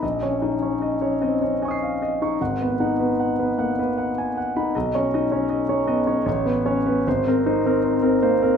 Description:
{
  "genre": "classical, impressionist solo piano",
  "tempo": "76 BPM",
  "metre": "3/4",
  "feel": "rubato",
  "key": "unclear",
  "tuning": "A4 = 439 Hz",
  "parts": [
    { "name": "warm concert grand piano", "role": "solo", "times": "0.0-8.6 s", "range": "G#1 to B#6", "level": "-20 LUFS", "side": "equal", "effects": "none" }
  ],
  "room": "moderate recital hall reverb, RT60 1.5 s",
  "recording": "minimal, uncompressed stereo recording",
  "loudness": "-20 LUFS",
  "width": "side -7 dB against mid",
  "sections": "0.0-8.6 A section",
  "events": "none",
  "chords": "0.0 A#m11; 2.4 G#m9; 4.7 Badd9; 6.3 Aadd9; 7.1 Abadd9",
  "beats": "| 0.03 0.82 1.61 | 2.40 3.18 3.97 | 4.75 5.50 6.26 | 7.06 7.84"
}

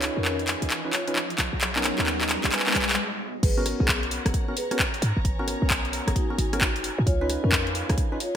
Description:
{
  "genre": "UK garage, two-step garage",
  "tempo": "132 BPM",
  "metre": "4/4",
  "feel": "swing 64% on 16ths",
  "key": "G# dorian",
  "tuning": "A4 = 441 Hz",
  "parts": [
    { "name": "dark studio violin section", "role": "sustained chords", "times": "0.0-8.4 s", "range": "B3 to A#5", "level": "-39 LUFS", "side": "equal", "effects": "sidechain pumping" },
    { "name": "percussive organ stab", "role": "stabs", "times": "0.0-8.2 s", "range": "B3 to B4", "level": "-32 LUFS", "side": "equal", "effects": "chorus, digital delay" },
    { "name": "short 808-style bass", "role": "bass", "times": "0.0-8.0 s", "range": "F#1 to G#2", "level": "-27 LUFS", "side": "equal", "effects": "none" },
    { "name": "house drum kit", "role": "drums", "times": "0.0-8.3 s", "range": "crash cymbal, handclaps, hi-hat, rim click", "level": "-25 LUFS", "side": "equal", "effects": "small room ambience, gated reverb" },
    { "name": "riser", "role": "sound effects", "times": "0.0-3.0 s", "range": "none", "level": "-34 LUFS", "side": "left 2 dB", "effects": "none" },
    { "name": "granular cloud pad", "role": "texture", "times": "0.0-3.0 s", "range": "G#4 to C#5", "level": "-40 LUFS", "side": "equal", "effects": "none" },
    { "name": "vibraphone with soft mallets", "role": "melody", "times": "0.2-8.4 s", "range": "B3 to G#5", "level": "-33 LUFS", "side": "left 1 dB", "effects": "ping-pong delay" },
    { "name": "electronic kick drum", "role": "drums", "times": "3.4-8.1 s", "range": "none", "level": "-26 LUFS", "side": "equal", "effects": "small room ambience" }
  ],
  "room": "light reverb, digital ambience",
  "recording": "bright 1980s-style digital production",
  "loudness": "-22 LUFS",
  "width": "side -9 dB against mid",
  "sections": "0.0-3.4 A section; 3.4-8.4 B section",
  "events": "build-up 0.0-3.4; drum fill 0.0-3.0; riser 0.0-3.0; filter sweep on synth stab 0.0-3.4; stop 3.0-3.4; drop 3.4-8.4",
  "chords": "0.0 C#9; 1.4 Bmaj9; 3.4 G#m11; 7.1 C#9",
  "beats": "0.25 0.70 1.16 | 1.61 2.07 2.52 2.98 | 3.43 3.88 4.34 4.79 | 5.25 5.70 6.16 6.61 | 7.07 7.52 7.98"
}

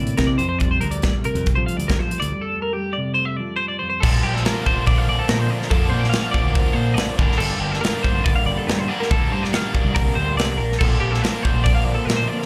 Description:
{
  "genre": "math rock and midwest emo",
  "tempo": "142 BPM",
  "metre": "4/4",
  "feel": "straight",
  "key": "unclear",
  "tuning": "A4 = 440 Hz",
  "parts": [
    { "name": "mellow electric guitar", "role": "accompaniment", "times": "0.0-5.5 s", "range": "F2 to D4", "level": "-31 LUFS", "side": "equal", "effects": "none" },
    { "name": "twelve-string electric guitar", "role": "arpeggios", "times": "0.0-12.5 s", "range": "G4 to F5", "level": "-27 LUFS", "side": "equal", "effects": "subtle chorus" },
    { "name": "growling fingered electric bass", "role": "bass", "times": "0.0-12.3 s", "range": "G1 to F3", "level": "-25 LUFS", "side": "equal", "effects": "overdrive" },
    { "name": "modern studio drum kit", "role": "drums", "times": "0.1-12.5 s", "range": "crash cymbal, hi-hat, kick drum, snare drum", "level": "-23 LUFS", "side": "equal", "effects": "none" },
    { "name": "biting overdriven guitar", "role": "riff", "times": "4.0-12.5 s", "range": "G2 to D4", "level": "-28 LUFS", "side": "equal", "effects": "slapback echo" }
  ],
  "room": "little or no reverb",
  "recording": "live gig heard through the venue's PA, club reverb",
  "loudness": "-20 LUFS",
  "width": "mono",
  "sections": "0.0-4.0 A section; 4.0-12.5 B section",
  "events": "break 2.3-4.0",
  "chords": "0.4 F69; 4.0 Bbmaj7; 7.2 Gmadd9; 10.8 Bbmaj7",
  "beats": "0.20 | 0.62 1.05 1.47 1.90 | 2.32 2.75 3.17 3.60 | 4.02 4.45 4.87 5.29 | 5.72 6.14 6.56 6.99 | 7.41 7.83 8.26 8.68 | 9.11 9.53 9.95 10.38 | 10.80 11.22 11.65 12.07"
}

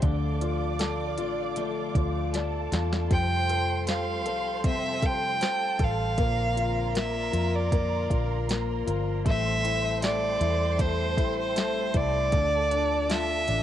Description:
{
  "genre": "pop ballad",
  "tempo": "78 BPM",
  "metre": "4/4",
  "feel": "straight",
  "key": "unclear",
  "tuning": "A4 = 440 Hz",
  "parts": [
    { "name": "warm studio violin section", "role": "second line", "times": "0.0-13.6 s", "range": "A4 to D6", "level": "-37 LUFS", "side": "right 11 dB", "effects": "cassette tape" },
    { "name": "warm baby grand piano", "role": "accompaniment", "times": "0.0-13.6 s", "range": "D3 to D5", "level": "-32 LUFS", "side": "left 11 dB", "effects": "cassette tape, plate reverb" },
    { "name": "warm symphonic string section", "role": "sustained chords", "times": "0.0-13.6 s", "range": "F4 to D6", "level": "-40 LUFS", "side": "right 1 dB", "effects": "cassette tape, plate reverb" },
    { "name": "twelve-string electric guitar", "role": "arpeggios", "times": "0.0-13.6 s", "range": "F2 to A4", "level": "-38 LUFS", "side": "right 1 dB", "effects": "spring reverb, cassette tape, analog delay" },
    { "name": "vintage muted fingered electric bass", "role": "bass", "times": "0.0-13.6 s", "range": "G1 to F2", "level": "-30 LUFS", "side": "right 1 dB", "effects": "none" },
    { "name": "smooth R&B drum kit", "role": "drums", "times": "0.0-13.6 s", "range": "hi-hat, kick drum, snare drum", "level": "-27 LUFS", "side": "right 1 dB", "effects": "cassette tape" },
    { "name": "rich violin", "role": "melody", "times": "3.1-13.6 s", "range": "C5 to G5", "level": "-28 LUFS", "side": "right 2 dB", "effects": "cassette tape, plate reverb" }
  ],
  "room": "light reverb",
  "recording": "home recording on cassette",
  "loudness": "-24 LUFS",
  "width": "side -11 dB against mid",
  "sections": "0.0-13.6 A section",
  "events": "drum fill 2.3-3.1",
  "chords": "0.0 Dm; 3.1 Fadd9; 6.2 Bbadd9; 9.3 Am7; 12.3 Dm",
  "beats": "| 0.03 0.79 1.56 2.33 | 3.10 3.87 4.64 5.41 | 6.18 6.95 7.72 8.49 | 9.26 10.03 10.79 11.56 | 12.33 13.10"
}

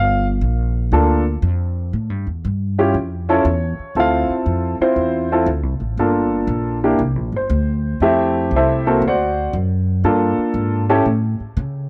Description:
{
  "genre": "jazz piano trio",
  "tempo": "118 BPM",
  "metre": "4/4",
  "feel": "swing 67% on 8ths",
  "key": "unclear",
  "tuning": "A4 = 441 Hz",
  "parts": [
    { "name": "warm upright piano", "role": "melody", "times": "0.0-11.0 s", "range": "A3 to F#5", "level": "-19 LUFS", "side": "equal", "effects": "slapback echo" },
    { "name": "upright bass", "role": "bass", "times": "0.0-11.9 s", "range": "G1 to C#3", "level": "-22 LUFS", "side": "equal", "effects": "none" }
  ],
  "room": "studio ambience",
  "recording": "dry, close 1970s-style studio recording",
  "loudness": "-18 LUFS",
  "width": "mono",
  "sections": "0.0-11.9 A section",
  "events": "none",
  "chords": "0.0 Gm7; 1.9 A7b13 (rootless); 4.0 Dm9; 6.0 Gm7; 7.0 Csus2; 8.0 Fmaj9; 9.0 D7; 10.0 Gm7; 11.1 A",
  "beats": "0.41 0.92 1.43 | 1.93 2.44 2.94 3.45 | 3.96 4.46 4.97 5.48 | 5.98 6.49 7.00 7.50 | 8.01 8.52 9.03 9.53 | 10.04 10.55 11.06 11.56"
}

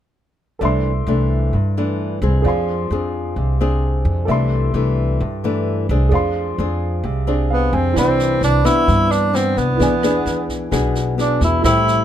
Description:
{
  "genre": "bossa nova",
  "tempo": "131 BPM",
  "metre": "4/4",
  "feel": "straight",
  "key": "C major",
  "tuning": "A4 = 440 Hz",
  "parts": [
    { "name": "nylon-string guitar", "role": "accompaniment", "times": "0.6-12.0 s", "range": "G2 to Ab4", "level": "-22 LUFS", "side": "left 4 dB", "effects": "none" },
    { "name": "warm concert grand piano", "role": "accompaniment", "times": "0.6-12.0 s", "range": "C4 to C6", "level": "-25 LUFS", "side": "right 3 dB", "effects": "none" },
    { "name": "upright bass", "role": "bass", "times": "0.6-12.0 s", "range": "A1 to G2", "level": "-19 LUFS", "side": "equal", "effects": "none" },
    { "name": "breathy tenor saxophone", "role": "melody", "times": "7.5-12.0 s", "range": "B3 to E4", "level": "-17 LUFS", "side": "right 1 dB", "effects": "none" },
    { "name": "jazz brush drum kit", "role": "drums", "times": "8.0-11.9 s", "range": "kick drum, rim click, snare drum", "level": "-26 LUFS", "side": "right 1 dB", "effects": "none" }
  ],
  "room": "little or no reverb",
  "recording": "close, detailed microphones",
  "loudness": "-15 LUFS",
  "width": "side -10 dB against mid",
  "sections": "0.6-8.0 A section; 8.0-12.0 B section",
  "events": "grand piano fill 7.3-8.0",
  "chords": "0.6 C69; 2.4 Fm6; 4.3 C69; 6.1 Fm6; 8.0 Cmaj9; 9.8 E7",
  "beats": "| 0.61 1.07 1.53 1.99 | 2.44 2.90 3.36 3.82 | 4.28 4.74 5.20 5.66 | 6.12 6.58 7.04 7.50 | 7.96 8.42 8.88 9.34 | 9.80 10.26 10.72 11.18 | 11.64"
}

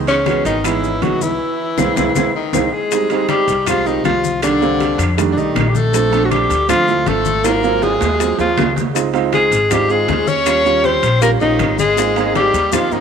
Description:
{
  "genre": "Afro-Cuban jazz",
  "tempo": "159 BPM",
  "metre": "4/4",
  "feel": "straight",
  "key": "F minor",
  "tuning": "A4 = 441 Hz",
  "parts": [
    { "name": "dark upright piano", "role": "accompaniment", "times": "0.0-13.0 s", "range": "D3 to D5", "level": "-20 LUFS", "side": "right 10 dB", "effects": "none" },
    { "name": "upright bass", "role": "bass", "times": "0.0-13.0 s", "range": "G#1 to F2", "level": "-22 LUFS", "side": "left 1 dB", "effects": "none" },
    { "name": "breathy alto saxophone", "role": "melody", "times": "0.1-13.0 s", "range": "C#4 to Db5", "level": "-17 LUFS", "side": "left 1 dB", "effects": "none" },
    { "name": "breathy tenor saxophone", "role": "second line", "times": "0.1-13.0 s", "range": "C#3 to Db4", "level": "-23 LUFS", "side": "left 11 dB", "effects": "none" },
    { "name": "bongos", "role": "percussion", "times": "0.1-13.0 s", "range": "none", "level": "-28 LUFS", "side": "left 12 dB", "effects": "none" },
    { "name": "congas", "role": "percussion", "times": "0.1-13.0 s", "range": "none", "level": "-26 LUFS", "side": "left 10 dB", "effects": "none" },
    { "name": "maracas", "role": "percussion", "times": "0.1-13.0 s", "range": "none", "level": "-30 LUFS", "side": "left 14 dB", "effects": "none" },
    { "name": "timbales", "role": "percussion", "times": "0.1-12.9 s", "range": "none", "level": "-26 LUFS", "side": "right 10 dB", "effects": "none" },
    { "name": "claves", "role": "percussion", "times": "0.3-12.9 s", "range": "none", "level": "-27 LUFS", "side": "left 10 dB", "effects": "none" }
  ],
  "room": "moderate plate reverb, RT60 3.6 s",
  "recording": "1960s-style stereo with parts hard left and right",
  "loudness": "-13 LUFS",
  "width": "side -7 dB against mid",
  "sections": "0.0-2.9 A section; 2.9-13.0 B section",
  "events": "band accent 1.4-2.9; drum fill 2.0-2.9, 7.4-9.0",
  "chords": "0.0 C#m9; 1.4 C7alt; 2.9 Fm9; 4.4 Cm9; 5.2 F13; 5.9 Bbmaj7; 7.4 Ab13; 9.0 Dbmaj9; 10.5 Eb9; 12.0 Ab69",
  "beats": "0.27 0.65 1.02 | 1.40 1.78 2.16 2.54 | 2.92 3.29 3.67 4.05 | 4.43 4.80 5.18 5.56 | 5.94 6.32 6.69 7.07 | 7.45 7.83 8.20 8.58 | 8.96 9.33 9.71 10.09 | 10.47 10.84 11.22 11.60 | 11.98 12.35 12.73"
}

